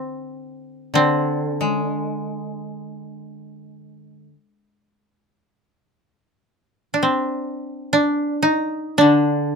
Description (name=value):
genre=japanese traditional, Japanese chamber music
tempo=free time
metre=none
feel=none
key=unclear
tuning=A4 = 440 Hz
part: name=koto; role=melody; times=0.0-9.6 s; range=C4 to Eb4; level=-20 LUFS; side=equal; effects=none
part: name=koto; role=accompaniment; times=0.0-9.6 s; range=D3 to Ab3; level=-22 LUFS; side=left 2 dB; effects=none
room=light reverb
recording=close, detailed microphones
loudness=-18 LUFS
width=side -5 dB against mid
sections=0.0-9.6 A section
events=none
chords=none